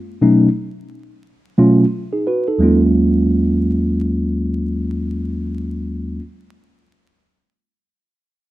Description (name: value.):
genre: hip hop.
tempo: 88 BPM.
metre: 4/4.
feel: swing 59% on 16ths.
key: Eb minor.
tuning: A4 = 440 Hz.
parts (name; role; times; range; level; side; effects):
mellow tine electric piano; accompaniment; 0.2-6.2 s; Eb2 to B4; -14 LUFS; equal; auto-pan.
room: light reverb, small room ambience.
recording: vinyl crackle.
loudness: -15 LUFS.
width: side -16 dB against mid.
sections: 0.0-2.6 A section; 2.6-5.3 B section.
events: none.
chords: 0.0 B7; 2.6 Ebm11.